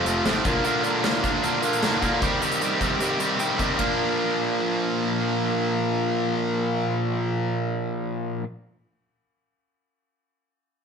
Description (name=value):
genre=indie rock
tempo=153 BPM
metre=4/4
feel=straight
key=Bb major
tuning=A4 = 440 Hz
part: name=fuzz guitar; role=riff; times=0.0-8.4 s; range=F2 to G4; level=-22 LUFS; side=equal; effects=distortion
part: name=growling picked electric bass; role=bass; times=0.1-0.6 s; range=F1 to Bb1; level=-32 LUFS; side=equal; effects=overdrive
part: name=big rock drum kit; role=drums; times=0.1-3.9 s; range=hi-hat, kick drum, ride cymbal, snare drum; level=-29 LUFS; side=equal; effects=none
room=moderate studio reverb, RT60 0.9 s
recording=band playing live in one room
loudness=-22 LUFS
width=side -6 dB against mid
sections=0.0-3.8 A section; 3.8-6.9 B section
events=none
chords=0.4 Bb; 2.2 Cm; 3.8 Bb